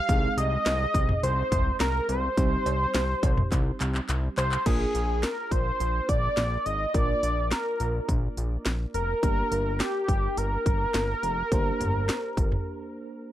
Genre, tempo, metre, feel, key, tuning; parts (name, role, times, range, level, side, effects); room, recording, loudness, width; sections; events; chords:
synth-pop; 105 BPM; 4/4; straight; A4 = 440 Hz
wide unison lead; melody; 0.0-13.2 s; G4 to F5; -28 LUFS; equal; plate reverb
FM electric piano with auto-pan; accompaniment; 0.0-13.3 s; G3 to C5; -36 LUFS; right 3 dB; plate reverb
fat analog bass; bass; 0.1-12.6 s; F1 to C2; -28 LUFS; equal
house drum kit; drums; 0.1-12.7 s; cowbell, crash cymbal, handclaps, hi-hat, kick drum, snare drum, toms; -27 LUFS; equal
light reverb; -24 LUFS; side -13 dB against mid
0.0-4.7 A section; 4.7-13.3 B section
drum fill 3.5-4.7; break 12.7-13.3
0.1 Ab/C; 2.4 Cm; 4.7 Bb; 9.2 Gm